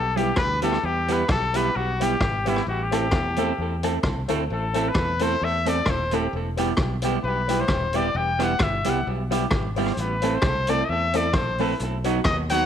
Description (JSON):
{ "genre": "ska", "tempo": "131 BPM", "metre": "4/4", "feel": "swing 56% on 8ths", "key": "E minor", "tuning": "A4 = 444 Hz", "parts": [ { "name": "clear trumpet", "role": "melody", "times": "0.0-12.7 s", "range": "E4 to G5", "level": "-25 LUFS", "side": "left 3 dB", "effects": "none" }, { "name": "fingered electric bass", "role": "bass", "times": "0.0-12.6 s", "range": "D#1 to E2", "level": "-28 LUFS", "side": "equal", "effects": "none" }, { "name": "semi-hollow electric guitar", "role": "accompaniment", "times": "0.2-12.7 s", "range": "F#3 to A4", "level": "-27 LUFS", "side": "right 8 dB", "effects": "tape echo" }, { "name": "bright upright piano", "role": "stabs", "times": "0.2-12.6 s", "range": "B3 to A4", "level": "-30 LUFS", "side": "left 8 dB", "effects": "tape echo" }, { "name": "street-band drum kit", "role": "drums", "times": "0.2-12.6 s", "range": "hi-hat, kick drum, rim click", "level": "-27 LUFS", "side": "equal", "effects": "none" } ], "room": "moderate echo chamber reverb, RT60 1.3 s, small room ambience", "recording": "1960s-style stereo with parts hard left and right", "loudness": "-21 LUFS", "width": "side -9 dB against mid", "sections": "0.0-12.7 A section", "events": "trumpet solo 0.0-12.7", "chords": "0.0 Em; 2.7 Am; 6.3 Em; 10.0 Am; 11.8 B" }